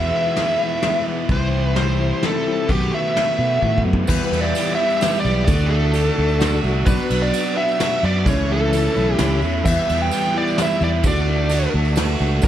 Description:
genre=folk rock and heartland rock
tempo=129 BPM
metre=3/4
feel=straight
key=D major from 4.1 s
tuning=A4 = 443 Hz
part: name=bluesy overdriven lead guitar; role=melody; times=0.0-12.5 s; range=G4 to G5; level=-22 LUFS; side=equal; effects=distortion
part: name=picked steel-string acoustic guitar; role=accompaniment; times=0.0-12.5 s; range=E2 to F#4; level=-26 LUFS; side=left 5 dB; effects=none
part: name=overdriven electric guitar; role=riff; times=0.0-12.5 s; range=E2 to G4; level=-25 LUFS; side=right 1 dB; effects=none
part: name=fingered electric bass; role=bass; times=0.0-12.5 s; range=B1 to B2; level=-20 LUFS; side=equal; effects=none
part: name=soft brush drum kit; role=drums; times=0.4-12.5 s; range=crash cymbal, kick drum, ride cymbal, snare drum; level=-24 LUFS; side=equal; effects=none
part: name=tonewheel organ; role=sustained chords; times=3.8-12.5 s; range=A3 to D5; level=-32 LUFS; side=equal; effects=none
part: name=overdriven reed electric piano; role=accompaniment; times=4.1-12.5 s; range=D4 to A5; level=-31 LUFS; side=right 6 dB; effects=fast tremolo
part: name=tambourine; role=percussion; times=4.1-12.5 s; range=none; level=-38 LUFS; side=right 8 dB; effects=none
room=light reverb, studio reverb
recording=dark, warm production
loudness=-16 LUFS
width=side -11 dB against mid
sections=0.0-4.1 A section; 4.1-12.5 B section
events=drum fill 3.6-4.1; reed electric piano fill 11.7-12.4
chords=0.0 E; 1.3 C; 2.7 B7; 4.1 Em; 5.5 D; 6.9 Bm; 8.3 A/C#; 9.6 Em; 11.0 D

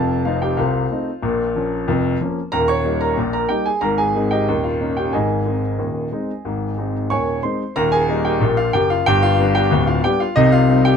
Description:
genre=ragtime piano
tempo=92 BPM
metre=2/4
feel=straight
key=Ab major, Eb major from 7.8 s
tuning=A4 = 440 Hz
part: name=warm grand piano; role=solo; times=0.0-11.0 s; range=D1 to Db6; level=-16 LUFS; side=left 1 dB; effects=none
room=light reverb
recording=close, detailed microphones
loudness=-16 LUFS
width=side -7 dB against mid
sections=0.0-7.8 A section; 7.8-11.0 B section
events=none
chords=0.0 F7; 1.2 Bbm; 2.5 Eb7; 3.8 Ab; 4.5 Eb7; 5.1 Ab; 7.8 Eb; 9.1 G7; 10.4 Cm

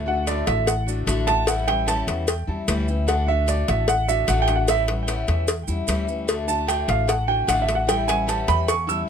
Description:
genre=latin, Cuban son and guajira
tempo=150 BPM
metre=4/4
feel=straight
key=D major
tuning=A4 = 440 Hz
part: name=picked steel-string acoustic guitar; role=accompaniment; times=0.0-9.1 s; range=D3 to F#4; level=-28 LUFS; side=left 5 dB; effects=none
part: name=upright bass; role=bass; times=0.0-9.0 s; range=A1 to E2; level=-24 LUFS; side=equal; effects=none
part: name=clear grand piano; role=arpeggios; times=0.1-9.0 s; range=D5 to E6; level=-24 LUFS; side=right 3 dB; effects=tape echo
part: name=cowbell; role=percussion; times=0.3-8.9 s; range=none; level=-26 LUFS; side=left 3 dB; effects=none
part: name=maracas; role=percussion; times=0.3-9.1 s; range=none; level=-33 LUFS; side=right 9 dB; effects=none
room=light reverb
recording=close, detailed microphones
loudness=-19 LUFS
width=side -7 dB against mid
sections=0.0-9.1 A section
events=grand piano solo 0.0-9.1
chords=0.0 D; 1.5 A7; 3.1 D; 4.7 A7; 6.3 D; 7.9 A7

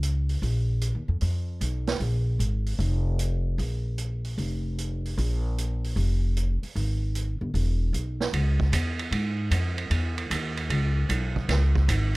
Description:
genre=modal jazz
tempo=152 BPM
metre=4/4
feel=swing 67% on 8ths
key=Bb dorian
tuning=A4 = 440 Hz
part: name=upright bass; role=bass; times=0.0-12.2 s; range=E1 to G#2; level=-25 LUFS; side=equal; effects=none
part: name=vintage drum kit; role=drums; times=0.0-12.0 s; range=hi-hat, kick drum, ride cymbal, snare drum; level=-32 LUFS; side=right 4 dB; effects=none
room=little or no reverb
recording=close, detailed microphones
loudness=-24 LUFS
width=side -22 dB against mid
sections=0.0-8.3 A section; 8.3-12.2 B section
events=none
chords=none

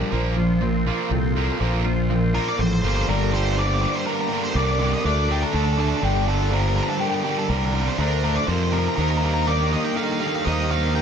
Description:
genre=post-rock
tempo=122 BPM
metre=3/4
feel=straight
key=G minor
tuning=A4 = 437 Hz
part: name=rich studio string section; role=sustained chords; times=0.0-11.0 s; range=A2 to C6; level=-34 LUFS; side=equal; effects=none
part: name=twangy electric guitar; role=arpeggios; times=0.0-3.1 s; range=Bb2 to G4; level=-33 LUFS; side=left 1 dB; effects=ensemble chorus, digital delay
part: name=vibraphone with medium hard mallets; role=arpeggios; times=0.0-11.0 s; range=A4 to D5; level=-31 LUFS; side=right 4 dB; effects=digital delay
part: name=distorted electric guitar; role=riff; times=0.0-11.0 s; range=F2 to Eb4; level=-26 LUFS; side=right 14 dB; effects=overdrive
part: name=overdriven electric guitar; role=riff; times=0.0-11.0 s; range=F2 to Eb4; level=-28 LUFS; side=left 12 dB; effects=none
part: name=fuzz fingered electric bass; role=bass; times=0.1-11.0 s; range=G1 to F2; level=-23 LUFS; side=equal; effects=overdrive
part: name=octave-fuzz lead guitar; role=melody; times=2.3-11.0 s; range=G4 to G5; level=-26 LUFS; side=left 3 dB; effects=distortion, digital delay
room=light reverb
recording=dark, warm production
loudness=-19 LUFS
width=side -7 dB against mid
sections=0.0-3.1 A section; 3.1-11.0 B section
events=build-up 0.0-3.1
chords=0.1 Bbsus2; 3.1 Gm7; 5.0 D5; 6.0 Gm7; 8.0 D5; 8.5 F5; 9.0 Ebmaj7

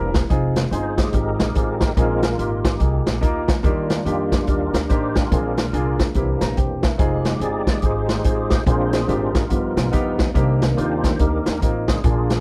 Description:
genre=uptempo gospel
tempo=143 BPM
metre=4/4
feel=swing 63% on 8ths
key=unclear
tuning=A4 = 441 Hz
part: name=warm grand piano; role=accompaniment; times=0.0-12.4 s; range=G2 to Bb5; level=-27 LUFS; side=equal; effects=none
part: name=tonewheel organ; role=sustained chords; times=0.0-12.4 s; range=Eb3 to D5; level=-28 LUFS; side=equal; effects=slow rotary speaker, overdrive, chorus vibrato
part: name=upright bass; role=bass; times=0.0-12.4 s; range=E1 to F2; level=-26 LUFS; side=equal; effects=none
part: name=swinging big-band drum kit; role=drums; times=0.1-12.4 s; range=hi-hat, kick drum, snare drum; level=-23 LUFS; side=equal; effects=none
room=little or no reverb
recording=none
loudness=-20 LUFS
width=mono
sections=0.0-12.4 A section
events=tonewheel organ solo 0.0-12.4; grand piano fill 6.2-7.0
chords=0.3 Fm7; 2.0 Bb7sus4; 3.6 Ebmaj7; 5.3 Bb7; 6.2 C7; 7.0 Fm7; 8.7 Bb7; 9.5 G7alt; 10.4 Cm7

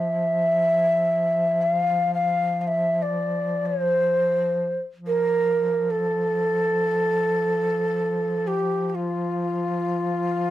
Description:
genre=Arabic maqam ensemble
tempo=free time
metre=none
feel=none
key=F maqam ajam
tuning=A4 = 438 Hz
part: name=breathy mellow ney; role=melody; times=0.0-10.5 s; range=F4 to F5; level=-21 LUFS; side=equal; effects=none
part: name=dark duduk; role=drone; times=0.0-10.5 s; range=F3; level=-29 LUFS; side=equal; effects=none
room=moderate small room ambience, RT60 0.5 s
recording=close, detailed microphones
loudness=-21 LUFS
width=side -14 dB against mid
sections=0.0-10.5 A section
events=slowing down 6.9-10.5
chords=none

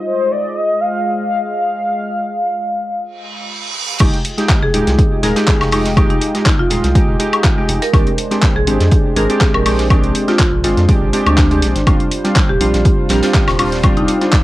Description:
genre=deep house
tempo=122 BPM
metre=4/4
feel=swing 54% on 16ths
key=F dorian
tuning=A4 = 443 Hz
part: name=warm analog pad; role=sustained chords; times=0.0-14.4 s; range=G3 to G5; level=-26 LUFS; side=equal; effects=chorus, sidechain pumping, cassette tape
part: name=mellow horn-like synth lead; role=melody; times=0.1-3.5 s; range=C5 to F5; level=-18 LUFS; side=left 1 dB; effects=phaser, analog chorus, cassette tape, analog delay
part: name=reverse cymbal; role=sound effects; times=3.2-4.0 s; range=none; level=-22 LUFS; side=right 5 dB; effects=none
part: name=warm analog keys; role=stabs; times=4.0-14.4 s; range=G3 to Bb4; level=-18 LUFS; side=right 1 dB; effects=chorus, sidechain pumping, cassette tape, tape echo
part: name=rubbery square bass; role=bass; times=4.0-14.1 s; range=Eb1 to F2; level=-18 LUFS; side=equal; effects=tube saturation, sidechain pumping
part: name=damped 70s drum kit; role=drums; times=4.0-14.4 s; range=hi-hat, snare drum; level=-29 LUFS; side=right 2 dB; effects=none
part: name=deep house drum kit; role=drums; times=4.0-14.4 s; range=crash cymbal, handclaps, hi-hat, woodblock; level=-19 LUFS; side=left 1 dB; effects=none
part: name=electronic kick drum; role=drums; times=4.0-14.4 s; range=none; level=-14 LUFS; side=equal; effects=overdrive
part: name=marimba with medium hard mallets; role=melody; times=4.6-14.1 s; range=D4 to Bb4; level=-20 LUFS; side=equal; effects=vintage 12-bit sampler grit, cassette tape, tape echo
room=light reverb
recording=home recording on cassette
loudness=-12 LUFS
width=side -16 dB against mid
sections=0.0-4.0 A section; 4.0-14.4 B section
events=reverse cymbal 3.2-4.0; drop 4.0-14.4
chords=0.1 Ab6; 4.0 Fm9; 7.9 Bb13; 11.9 Ebmaj13

